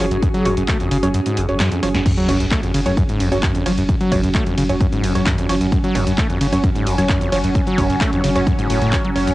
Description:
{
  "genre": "driving peak-time techno",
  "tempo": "131 BPM",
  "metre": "4/4",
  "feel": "straight",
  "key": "unclear",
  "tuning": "A4 = 443 Hz",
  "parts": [
    { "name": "overdriven acid bass", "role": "riff", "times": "0.0-9.3 s", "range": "F#1 to A3", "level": "-20 LUFS", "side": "equal", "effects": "sidechain pumping, analog delay" },
    { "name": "filtered dub chord stab", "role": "stabs", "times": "0.0-9.3 s", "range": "F#3 to C#5", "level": "-24 LUFS", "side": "right 1 dB", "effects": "chorus, sidechain pumping, analog delay" },
    { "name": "warm sub bass", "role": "bass", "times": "0.0-9.3 s", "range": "F#1", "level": "-25 LUFS", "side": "equal", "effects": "overdrive, sidechain pumping, low-pass filter" },
    { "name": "techno drum kit", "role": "drums", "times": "0.0-9.3 s", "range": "crash cymbal, handclaps, hi-hat, ride cymbal, snare drum", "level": "-26 LUFS", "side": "equal", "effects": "sidechain pumping on hats, cassette tape, sidechain pumping on cymbals" },
    { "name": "granular cloud pad", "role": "texture", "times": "0.0-9.3 s", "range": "C#4 to F#5", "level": "-25 LUFS", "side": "right 2 dB", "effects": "built-in reverb, sidechain pumping" },
    { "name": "electronic kick drum", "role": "drums", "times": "0.2-9.0 s", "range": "none", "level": "-20 LUFS", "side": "equal", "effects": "cassette tape" },
    { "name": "deep dark ambient pad", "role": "drone", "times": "3.9-9.3 s", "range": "F#3 to C#4", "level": "-25 LUFS", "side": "equal", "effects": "chorus, built-in reverb, sidechain pumping" },
    { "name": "sub drop", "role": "sound effects", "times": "2.1-3.9 s", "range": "none", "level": "-27 LUFS", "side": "equal", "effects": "none" }
  ],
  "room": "light reverb",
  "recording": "home recording on cassette",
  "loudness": "-15 LUFS",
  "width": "side -17 dB against mid",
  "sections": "0.0-2.1 A section; 2.1-9.3 B section",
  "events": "kick drops out 1.1-2.1; drum fill 1.6-2.1; drop 2.1-9.3; impact 2.1-3.9",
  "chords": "0.0 F#5",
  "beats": "| 0.23 0.68 1.14 1.60 | 2.06 2.52 2.97 3.43 | 3.89 4.35 4.80 5.26 | 5.72 6.18 6.64 7.09 | 7.55 8.01 8.47 8.93"
}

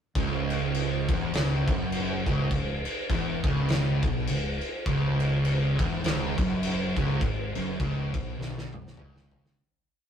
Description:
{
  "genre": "stoner and doom metal",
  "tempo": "102 BPM",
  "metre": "4/4",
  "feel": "swing 58% on 8ths",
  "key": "C# minor",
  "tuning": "A4 = 440 Hz",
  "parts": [
    { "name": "fuzz guitar", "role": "riff", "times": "0.2-9.6 s", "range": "C#2 to B2", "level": "-27 LUFS", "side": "right 1 dB", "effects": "distortion" },
    { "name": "growling fingered electric bass", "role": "bass", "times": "0.2-9.5 s", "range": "C#1 to B1", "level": "-36 LUFS", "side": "equal", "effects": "overdrive" },
    { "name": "oversized low-tuned drum kit", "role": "drums", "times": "0.2-9.6 s", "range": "crash cymbal, kick drum, snare drum, toms", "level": "-29 LUFS", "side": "equal", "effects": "none" }
  ],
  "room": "light reverb",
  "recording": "rough rehearsal-room recording, tube saturation",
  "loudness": "-25 LUFS",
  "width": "side -8 dB against mid",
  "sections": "0.2-9.6 riff",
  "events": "fade-out 7.2-9.6; drum fill 8.4-9.6",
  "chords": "0.2 C#m",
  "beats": "| 0.15 0.75 1.33 1.93 | 2.51 3.10 3.69 4.28 | 4.86 5.45 6.04 6.62 | 7.21 7.80 8.39 8.98"
}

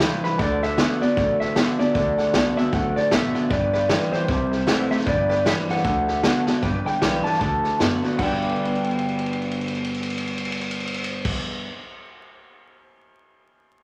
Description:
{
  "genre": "rockabilly",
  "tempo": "154 BPM",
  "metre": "4/4",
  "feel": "swing 60% on 8ths",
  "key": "G major",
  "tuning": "A4 = 439 Hz",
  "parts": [
    { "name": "honky-tonk upright piano", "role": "accompaniment", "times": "0.0-11.3 s", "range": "A4 to A5", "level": "-37 LUFS", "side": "equal", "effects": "none" },
    { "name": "picked acoustic archtop guitar", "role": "accompaniment", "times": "0.0-11.7 s", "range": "G2 to G4", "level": "-34 LUFS", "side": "equal", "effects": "none" },
    { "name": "electric guitar through a small old amp", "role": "riff", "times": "0.0-11.7 s", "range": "G2 to D4", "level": "-27 LUFS", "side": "equal", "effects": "spring reverb" },
    { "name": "upright bass", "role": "bass", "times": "0.0-11.3 s", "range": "G1 to F#2", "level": "-36 LUFS", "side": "equal", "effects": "none" },
    { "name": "vintage drum kit", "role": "drums", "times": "0.0-12.8 s", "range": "crash cymbal, hi-hat, kick drum, ride cymbal, snare drum", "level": "-28 LUFS", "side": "equal", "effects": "none" },
    { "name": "electric guitar through a small old amp", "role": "melody", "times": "0.2-11.3 s", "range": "B4 to A5", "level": "-27 LUFS", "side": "equal", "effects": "none" }
  ],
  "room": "moderate large studio reverb, RT60 1.3 s",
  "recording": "vinyl crackle",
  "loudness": "-22 LUFS",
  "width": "mono",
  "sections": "0.0-6.6 A section; 6.6-8.2 B section; 8.2-11.3 C section",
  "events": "drum fill 6.4, 8.4-11.2",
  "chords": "0.4 D; 3.5 G; 4.3 C; 5.1 G; 5.8 D; 6.6 G; 7.4 D; 8.2 G",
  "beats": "0.01 | 0.39 0.78 1.17 1.56 | 1.95 2.34 2.73 3.12 | 3.51 3.90 4.29 4.68 | 5.07 5.46 5.85 6.24 | 6.63 7.02 7.41 7.80 | 8.19 8.59 8.98 9.37 | 9.76 10.15 10.54 10.94"
}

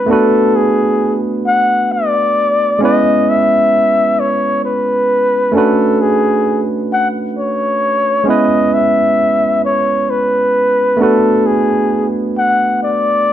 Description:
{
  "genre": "R&B",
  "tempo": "44 BPM (dotted quarters)",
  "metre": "6/8",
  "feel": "straight",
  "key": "unclear",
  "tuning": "A4 = 440 Hz",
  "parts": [
    { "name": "breathy flugelhorn", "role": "melody", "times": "0.0-13.3 s", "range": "G#4 to F#5", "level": "-13 LUFS", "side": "left 2 dB", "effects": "slapback echo" },
    { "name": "barky tine electric piano", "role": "accompaniment", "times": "0.0-13.3 s", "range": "G#3 to B4", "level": "-15 LUFS", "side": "right 3 dB", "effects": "none" }
  ],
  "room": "light reverb",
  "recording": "none",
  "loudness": "-11 LUFS",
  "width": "side -11 dB against mid",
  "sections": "0.0-13.3 A section",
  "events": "none",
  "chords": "0.1 Bm7; 2.8 C#m7; 5.5 Bm9; 8.3 C#m7; 11.0 Bm7",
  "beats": "| 0.08 1.44 | 2.81 4.17 | 5.53 6.90 | 8.26 9.62 | 10.99 12.35"
}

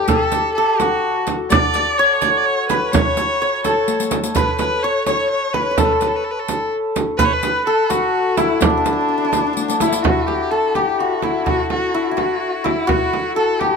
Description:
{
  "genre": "Persian modal ensemble",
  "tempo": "84 BPM (dotted quarters)",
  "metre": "6/8",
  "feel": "straight",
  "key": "unclear",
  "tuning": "A4 = 440 Hz",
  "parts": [
    { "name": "santur", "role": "melody", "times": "0.0-13.8 s", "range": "D4 to D5", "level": "-18 LUFS", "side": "left 1 dB", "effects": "none" },
    { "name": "clear kamancheh", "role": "second line", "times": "0.0-13.8 s", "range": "D4 to D5", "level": "-23 LUFS", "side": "left 1 dB", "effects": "none" },
    { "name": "frame drum", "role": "percussion", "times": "0.1-13.7 s", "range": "none", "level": "-21 LUFS", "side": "right 5 dB", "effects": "none" },
    { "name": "riq", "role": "percussion", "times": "0.1-10.0 s", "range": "none", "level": "-27 LUFS", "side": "left 5 dB", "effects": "none" }
  ],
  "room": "light reverb",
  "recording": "close, detailed microphones",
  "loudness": "-15 LUFS",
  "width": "side -5 dB against mid",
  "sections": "0.0-10.0 A section; 10.0-13.8 B section",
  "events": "drum fill 3.9-4.4, 9.6-10.0",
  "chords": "none",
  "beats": "| 0.08 0.80 | 1.51 2.22 | 2.93 3.64 | 4.35 5.06 | 5.78 6.49 | 7.20 7.91 | 8.62 9.33 | 10.04 10.75 | 11.46 12.18 | 12.89 13.60"
}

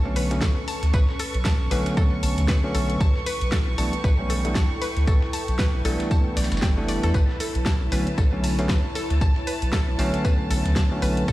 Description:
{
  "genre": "deep house",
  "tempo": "116 BPM",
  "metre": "4/4",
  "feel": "swing 58% on 16ths",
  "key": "B minor",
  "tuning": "A4 = 440 Hz",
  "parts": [
    { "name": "soft string machine", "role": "sustained chords", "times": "0.0-11.3 s", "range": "C#4 to C#6", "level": "-34 LUFS", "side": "equal", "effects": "ensemble chorus, sidechain pumping" },
    { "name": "warm sub bass", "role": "bass", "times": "0.0-11.3 s", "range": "F#1 to E2", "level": "-24 LUFS", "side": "equal", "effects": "sidechain pumping" },
    { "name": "impact", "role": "sound effects", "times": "0.7-0.9 s", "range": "none", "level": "barely audible", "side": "none", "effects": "none" },
    { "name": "warm chamber violin section", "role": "texture", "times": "0.0-11.3 s", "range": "A5 to C#6", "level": "-36 LUFS", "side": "right 2 dB", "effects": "sidechain pumping" },
    { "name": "bell-like tine electric piano", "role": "stabs", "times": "0.1-11.3 s", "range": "D3 to D4", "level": "-28 LUFS", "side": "equal", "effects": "sidechain pumping, digital delay" },
    { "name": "mallet-like synth pluck", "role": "arpeggios", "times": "0.2-11.3 s", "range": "A4 to A5", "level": "-33 LUFS", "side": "left 2 dB", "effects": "chorus, sidechain pumping, digital delay" },
    { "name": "deep house drum kit", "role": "drums", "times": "0.2-11.3 s", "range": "hi-hat, snare drum", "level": "-32 LUFS", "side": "equal", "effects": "none" },
    { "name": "dusty soul sampler-style drum kit", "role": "drums", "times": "0.2-11.3 s", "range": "hi-hat, snare drum, tambourine", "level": "-40 LUFS", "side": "left 1 dB", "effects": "none" },
    { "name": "electronic kick drum", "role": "drums", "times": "0.4-11.3 s", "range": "none", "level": "-22 LUFS", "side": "equal", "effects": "overdrive" }
  ],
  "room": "light reverb",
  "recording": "played on a big sound system in a bare room, stone room reverb",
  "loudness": "-20 LUFS",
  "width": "side -16 dB against mid",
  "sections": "0.0-11.3 A section",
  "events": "impact 0.0-0.9",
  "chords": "0.0 Bm9; 3.0 A9sus4/B; 7.1 Bm9",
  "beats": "0.42 | 0.94 1.45 1.97 2.49 | 3.01 3.52 4.04 4.56 | 5.08 5.59 6.11 6.63 | 7.14 7.66 8.18 8.70 | 9.21 9.73 10.25 10.76 | 11.28"
}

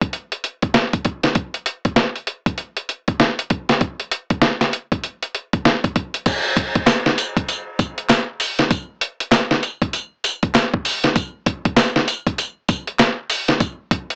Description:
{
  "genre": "R&B",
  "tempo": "98 BPM",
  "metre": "4/4",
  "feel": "swing 62% on 16ths",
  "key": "none",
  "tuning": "none",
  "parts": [
    { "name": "dusty soul sampler-style drum kit", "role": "drums", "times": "0.0-14.2 s", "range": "crash cymbal, hi-hat, kick drum, snare drum, tambourine", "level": "-19 LUFS", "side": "equal", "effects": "none" },
    { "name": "group handclap", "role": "percussion", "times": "6.9-13.2 s", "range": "none", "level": "-29 LUFS", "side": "equal", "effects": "none" }
  ],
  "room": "light reverb",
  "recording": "home recording on cassette, small speaker sound",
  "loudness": "-20 LUFS",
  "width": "mono",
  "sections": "0.0-6.3 A section; 6.3-14.2 B section",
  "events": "none",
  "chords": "none",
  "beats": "0.14 0.75 | 1.36 1.97 2.59 3.20 | 3.81 4.42 5.04 5.65 | 6.26 6.87 7.48 8.10 | 8.71 9.32 9.93 10.54 | 11.16 11.77 12.38 12.99 | 13.61"
}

